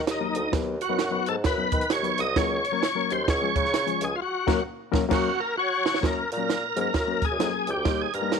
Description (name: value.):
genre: uptempo 1960s-style soul.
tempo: 131 BPM.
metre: 4/4.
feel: swing 61% on 8ths.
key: F# major.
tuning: A4 = 440 Hz.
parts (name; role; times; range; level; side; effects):
mellow bassoon; bass; 0.0-8.4 s; B#1 to D#3; -30 LUFS; equal; none.
bright tonewheel organ; melody; 0.1-8.4 s; D#4 to D#5; -26 LUFS; equal; overdrive, chorus vibrato, slow rotary speaker.
compact cocktail drum kit; drums; 0.1-8.4 s; crash cymbal, hi-hat, kick drum, snare drum; -28 LUFS; right 4 dB; none.
bright reed electric piano; accompaniment; 0.2-8.4 s; E#3 to B4; -30 LUFS; left 12 dB; overdrive.
room: light reverb, small room ambience.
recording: 1960s-style stereo.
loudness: -23 LUFS.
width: side -6 dB against mid.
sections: 0.0-6.0 A section; 6.0-8.4 B section.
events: tonewheel organ solo 0.0-6.0; band accent 4.2-6.0; drum fill 5.1-6.0.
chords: 0.0 D#m; 0.5 B/D#; 2.4 F#/C#; 3.3 C#; 4.2 F#; 7.9 D#.